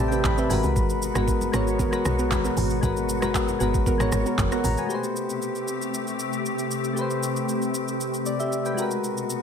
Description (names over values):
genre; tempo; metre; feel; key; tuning
amapiano; 116 BPM; 4/4; straight; unclear; A4 = 439 Hz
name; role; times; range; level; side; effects
soft electric-piano-like synth keys; accompaniment; 0.0-9.4 s; G#3 to B5; -27 LUFS; left 4 dB; chorus
glassy FM pad; sustained chords; 0.0-9.4 s; B2 to G4; -29 LUFS; left 1 dB; ensemble chorus, built-in reverb, sidechain pumping
soft round pluck; stabs; 0.0-4.6 s; B3 to B4; -30 LUFS; right 6 dB; chorus, digital delay
woody log drum bass; bass; 0.0-4.8 s; F#1 to C2; -27 LUFS; equal; none
smooth R&B drum kit; drums; 0.1-9.4 s; handclaps, hi-hat, kick drum, rim click, shaker; -28 LUFS; equal; overdrive
congas; percussion; 0.2-4.8 s; none; -35 LUFS; right 3 dB; none
room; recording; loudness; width
light reverb, digital ambience; none; -22 LUFS; side -7 dB against mid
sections
0.0-4.9 A section; 4.9-9.4 B section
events
drop 0.0-4.9; synth keys fill 0.0-0.8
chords
0.0 Am9; 0.5 G#m9; 4.9 Am9; 8.8 G#m9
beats
0.24 | 0.76 1.28 1.79 2.31 | 2.83 3.35 3.86 4.38 | 4.90 5.42 5.93 6.45 | 6.97 7.49 8.00 8.52 | 9.04